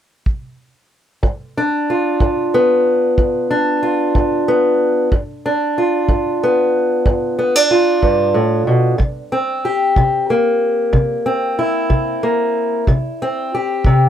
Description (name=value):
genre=acoustic country blues, solo or duo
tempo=62 BPM (dotted quarters)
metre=12/8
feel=straight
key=unclear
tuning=A4 = 442 Hz
part: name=kick drum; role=drums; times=0.3-14.0 s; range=none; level=-18 LUFS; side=equal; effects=none
part: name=fingerpicked steel-string acoustic guitar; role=accompaniment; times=1.2-14.1 s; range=G2 to G4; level=-14 LUFS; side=equal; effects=none
room=wet booth ambience, RT60 0.2 s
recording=none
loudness=-14 LUFS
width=side -10 dB against mid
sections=0.0-1.2 A section; 1.2-14.1 B section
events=none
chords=0.0 N.C.; 1.2 G7; 9.0 C7